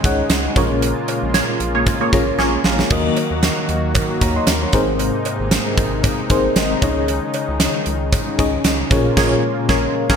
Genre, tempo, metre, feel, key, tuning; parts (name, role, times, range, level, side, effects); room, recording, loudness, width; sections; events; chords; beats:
1980s-style pop; 115 BPM; 4/4; swing 55% on 16ths; Db major; A4 = 440 Hz
FM electric piano with tremolo; accompaniment; 0.0-10.2 s; Ab2 to C6; -20 LUFS; left 2 dB; phaser
warm analog pad; sustained chords; 0.0-10.2 s; C3 to Gb4; -25 LUFS; equal; chorus
rubbery square bass; bass; 0.0-10.2 s; Ab1 to Eb2; -24 LUFS; equal
gated 80s drum kit; drums; 0.0-10.2 s; crash cymbal, hi-hat, kick drum, snare drum, tambourine; -19 LUFS; right 1 dB; gated reverb
cowbell; percussion; 0.3-9.0 s; -33 LUFS; right 6 dB
funky polysynth comp; stabs; 1.3-2.6, 9.2-10.2 s; Bb3 to Db5; -22 LUFS; right 2 dB; chorus, phaser
moderate plate reverb, RT60 2.4 s; bright 1980s-style digital production; -15 LUFS; side -7 dB against mid
0.0-10.2 A section
band accent 0.8-2.9, 9.2-10.2; FM electric piano fill 1.9-2.9, 6.3-7.1; drum fill 2.4-2.9
0.0 Dbsus2; 0.6 Bbm7; 2.9 Ebm; 4.7 Abadd9; 6.8 Dbsus2; 8.9 Bbm7
0.30 | 0.82 1.34 1.86 2.39 | 2.91 3.43 3.95 4.47 | 5.00 5.52 6.04 6.56 | 7.08 7.60 8.12 8.65 | 9.17 9.69